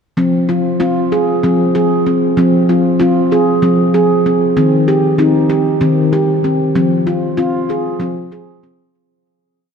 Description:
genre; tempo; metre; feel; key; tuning
world meditative, meditative tuned percussion; 192 BPM (eighths); 7/8; straight; F minor; A4 = 443 Hz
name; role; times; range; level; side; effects
handpan; solo; 0.2-8.9 s; Eb3 to Ab4; -11 LUFS; equal; ping-pong delay
room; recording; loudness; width
wet cathedral reverb, RT60 5.2 s; in a vast, echoing space; -11 LUFS; side -6 dB against mid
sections
0.2-8.9 A section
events
fade-out 6.8-8.9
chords
0.2 Fm; 4.6 Eb; 6.8 Fm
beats
| 0.17 0.48 0.80 1.11 1.43 1.74 2.06 | 2.37 2.69 3.00 3.31 3.63 3.94 4.25 | 4.57 4.88 5.19 5.50 5.82 6.13 6.44 | 6.75 7.07 7.38 7.69 8.00 8.31 8.62

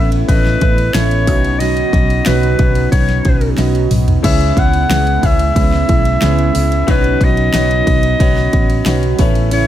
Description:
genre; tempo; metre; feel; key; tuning
piano-driven pop; 91 BPM; 4/4; straight; unclear; A4 = 445 Hz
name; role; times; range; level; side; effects
warm clarinet; melody; 0.0-9.7 s; B4 to F#5; -18 LUFS; left 2 dB; none
warm concert grand piano; accompaniment; 0.0-9.7 s; A2 to E5; -21 LUFS; left 5 dB; none
airy breathy pad; sustained chords; 0.0-9.7 s; C#3 to E4; -24 LUFS; right 1 dB; none
fingerpicked plugged-in steel-string acoustic guitar; riff; 0.0-9.7 s; B2 to B4; -21 LUFS; right 11 dB; none
vintage muted fingered electric bass; bass; 0.0-9.7 s; A1 to C#2; -16 LUFS; equal; none
pop drum kit; drums; 0.1-9.7 s; crash cymbal, hi-hat, kick drum, ride cymbal, snare drum, toms; -16 LUFS; equal; none
room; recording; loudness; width
little or no reverb; dark, warm production; -11 LUFS; side -12 dB against mid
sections
0.0-4.2 A section; 4.2-9.7 A section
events
drum fill 3.6-4.2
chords
0.0 Aadd9; 1.3 Badd9; 4.2 C#m7; 6.9 Badd9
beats
0.28 0.94 | 1.60 2.26 2.92 3.58 | 4.24 4.90 5.56 6.22 | 6.88 7.54 8.20 8.86 | 9.52

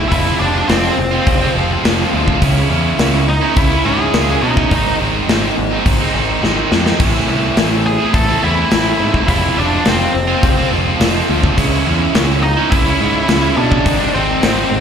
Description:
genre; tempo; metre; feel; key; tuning
quiet-loud alternative rock; 105 BPM; 4/4; straight; unclear; A4 = 440 Hz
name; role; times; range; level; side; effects
octave-fuzz lead guitar; melody; 0.0-14.8 s; C4 to A5; -18 LUFS; equal; distortion, slapback echo, digital delay
crunchy overdriven guitar; riff; 0.0-14.8 s; G#2 to F4; -18 LUFS; right 11 dB; slapback echo
tight distorted guitar; riff; 0.0-14.8 s; G#2 to F4; -21 LUFS; left 12 dB; distortion, slapback echo
growling picked electric bass; bass; 0.0-14.8 s; F1 to B2; -19 LUFS; left 1 dB; overdrive
big rock drum kit; drums; 0.1-14.6 s; crash cymbal, hi-hat, kick drum, snare drum; -17 LUFS; left 1 dB; none
room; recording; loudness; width
light reverb, small room ambience; live gig heard through the venue's PA, club reverb; -12 LUFS; side -7 dB against mid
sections
0.0-14.8 A section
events
drum fill 6.4-7.0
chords
0.1 Fm; 2.4 C#m; 4.7 G#; 7.0 Am; 9.3 Fm; 11.6 C#m; 13.9 G#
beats
| 0.12 0.69 1.27 1.84 | 2.42 2.99 3.56 4.14 | 4.71 5.28 5.86 6.43 | 7.00 7.57 8.14 8.72 | 9.29 9.86 10.43 11.00 | 11.57 12.14 12.71 13.29 | 13.86 14.43

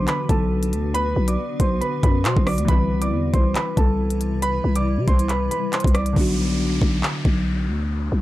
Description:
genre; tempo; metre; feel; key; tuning
hip hop, drill; 138 BPM; 4/4; half-time; B phrygian; A4 = 440 Hz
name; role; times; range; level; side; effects
dark concert grand piano; melody; 0.0-6.1 s; A4 to D6; -26 LUFS; right 2 dB; none
glassy digital keys; accompaniment; 0.0-8.2 s; D3 to F#4; -29 LUFS; left 2 dB; chorus
granular cloud pad; sustained chords; 0.0-6.1 s; C3 to B4; -31 LUFS; left 1 dB; built-in reverb
growling 808-style bass; bass; 0.0-8.2 s; B1 to C3; -22 LUFS; equal; none
drill drum kit; drums; 0.1-7.4 s; crash cymbal, handclaps, hi-hat, kick drum, rim click; -21 LUFS; equal; none
downlifter; sound effects; 6.2-8.2 s; none; -31 LUFS; equal; none
room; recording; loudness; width
digital ambience; dark, warm production; -18 LUFS; side -16 dB against mid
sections
0.0-6.2 A section; 6.2-8.2 B section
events
hi-hats muted 6.2-8.2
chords
0.0 Bm; 2.7 Cmaj7; 6.2 Bm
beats
0.08 0.51 | 0.95 1.38 1.81 2.25 | 2.69 3.12 3.55 3.99 | 4.42 4.86 5.29 5.73 | 6.16 6.60 7.03 7.47 | 7.90

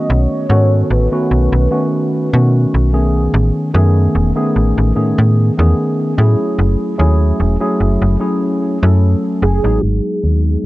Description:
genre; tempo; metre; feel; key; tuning
vaporwave; 74 BPM; 4/4; swing 53% on 16ths; unclear; A4 = 440 Hz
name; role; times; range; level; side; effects
warm velvety synth lead; melody; 0.0-2.5, 9.4-10.7 s; G#4 to D#5; -21 LUFS; right 1 dB; chorus, tape echo
mellow tine electric piano; accompaniment; 0.0-10.7 s; D#3 to A4; -16 LUFS; equal; lush chorus, vintage 12-bit sampler grit, tape echo
slap-like FM bass; bass; 0.1-10.6 s; E1 to B2; -12 LUFS; equal; tube saturation
room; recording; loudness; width
light reverb, digital ambience; cassette tape, low-pass filter; -12 LUFS; side -18 dB against mid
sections
0.0-9.8 A section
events
none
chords
0.0 B9; 3.3 Amaj9#11; 9.8 G#m7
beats
| 0.10 0.91 1.72 2.53 | 3.34 4.15 4.96 5.77 | 6.58 7.39 8.20 9.01 | 9.82 10.64

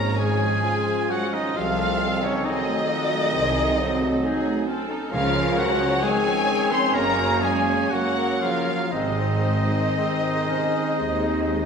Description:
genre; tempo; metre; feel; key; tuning
classical, slow romantic movement for symphony orchestra; 57-69 BPM; 4/4; rubato; Db major; A4 = 440 Hz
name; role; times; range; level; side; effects
warm studio violin section; melody; 0.0-11.7 s; Db5 to C6; -28 LUFS; left 3 dB; none
clear oboe; second line; 0.0-11.7 s; Db5 to C6; -32 LUFS; right 1 dB; none
flute section; second line; 0.0-11.7 s; Db5 to C6; -31 LUFS; left 1 dB; none
warm clarinet; second line; 0.0-11.7 s; Bb3 to Eb4; -32 LUFS; equal; none
warm studio violin section; second line; 0.0-11.7 s; F4 to Db5; -32 LUFS; left 3 dB; none
warm bassoon; accompaniment; 0.0-11.7 s; Db3 to Ab3; -32 LUFS; right 2 dB; none
warm studio viola section; accompaniment; 0.0-11.7 s; C3 to Db5; -31 LUFS; right 1 dB; none
mellow French horn section; sustained chords; 0.0-11.7 s; Db3 to C4; -30 LUFS; left 6 dB; none
mellow trombone section; sustained chords; 0.0-11.7 s; Db3 to Db4; -31 LUFS; right 4 dB; none
clear trumpet; stabs; 0.0-11.7 s; Db4 to C5; -29 LUFS; right 1 dB; none
clear tuba; bass; 0.0-11.7 s; Gb1 to Eb2; -32 LUFS; right 4 dB; none
warm studio cello section; bass; 0.0-11.7 s; Eb2 to Db3; -32 LUFS; right 2 dB; none
warm studio double bass section; bass; 0.0-11.7 s; Gb1 to Eb2; -30 LUFS; right 2 dB; none
timpani; percussion; 5.1-6.5 s; Db3; -35 LUFS; left 2 dB; none
room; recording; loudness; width
wet scoring stage reverb, RT60 1.7 s; minimal, uncompressed stereo recording; -20 LUFS; side -6 dB against mid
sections
0.0-11.7 A section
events
none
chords
0.0 Db; 1.6 Cdim7; 5.1 Db; 7.0 Gb; 8.9 Ab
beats
0.64 | 1.56 2.45 3.33 4.23 | 5.13 6.04 6.96 7.92 | 8.93 9.96 10.99

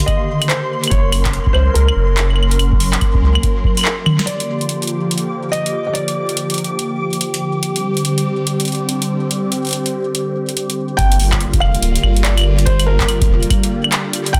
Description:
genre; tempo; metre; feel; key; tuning
IDM; 143 BPM; 4/4; swing 62% on 16ths; G minor; A4 = 436 Hz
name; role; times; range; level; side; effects
phased analog pad; sustained chords; 0.0-14.4 s; D3 to A#4; -23 LUFS; equal; phaser, chorus
booming analog drum machine; drums; 0.0-14.4 s; claves, handclaps, hi-hat, snare drum, toms; -22 LUFS; equal; digital delay
flickering grainy texture; texture; 0.0-11.0 s; C6 to D6; -32 LUFS; equal; built-in reverb
felt-muted upright piano; melody; 0.1-7.4, 11.0-14.4 s; A#4 to G5; -26 LUFS; equal; digital delay
electronic kick drum; drums; 0.1-3.7, 11.0-14.4 s; none; -20 LUFS; equal; none
round analog bass; bass; 0.9-3.4, 11.0-14.4 s; D1 to C#2; -17 LUFS; equal; none
room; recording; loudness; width
light reverb, digital ambience; dense, heavily limited modern master; -17 LUFS; mono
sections
0.0-4.3 A section; 4.3-11.0 B section; 11.0-14.4 C section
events
drum fill 4.0-4.3; band accent 4.2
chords
0.0 Ebmaj7; 0.9 F#; 4.3 Gm7; 7.6 Csus2; 11.0 Gm7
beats
0.08 0.50 | 0.92 1.33 1.75 2.17 | 2.59 3.01 3.43 3.85 | 4.27 4.69 5.11 5.53 | 5.95 6.37 6.79 7.21 | 7.63 8.05 8.47 8.89 | 9.31 9.73 10.15 10.57 | 10.98 11.40 11.82 12.24 | 12.66 13.08 13.50 13.92 | 14.34

